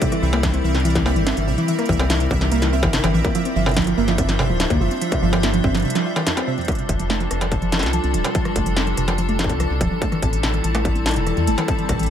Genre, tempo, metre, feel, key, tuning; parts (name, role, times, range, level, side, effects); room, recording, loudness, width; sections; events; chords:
IDM; 144 BPM; 4/4; straight; F major; A4 = 440 Hz
icy glass pad; sustained chords; 0.0-12.1 s; G3 to C5; -25 LUFS; equal; chorus, built-in reverb
warbly dusty pluck; arpeggios; 0.0-12.1 s; F2 to F4; -23 LUFS; right 2 dB; chorus, cassette tape, tape echo
electronic kick drum; drums; 0.0-12.0 s; -24 LUFS; left 1 dB; distortion
industrial drum kit; drums; 0.0-12.1 s; hi-hat, rim click, snare drum, struck metal; -25 LUFS; left 1 dB; tape echo
pulsing gated texture; texture; 0.0-12.1 s; E5 to A5; -30 LUFS; left 1 dB; chorus, built-in reverb
round analog bass; bass; 0.2-12.1 s; D1 to E2; -22 LUFS; left 1 dB
light reverb; -17 LUFS; side -9 dB against mid
0.0-6.7 A section; 6.7-12.1 B section
break 5.8-6.7
0.0 C7; 3.4 G7sus4; 6.7 F69; 10.0 Am7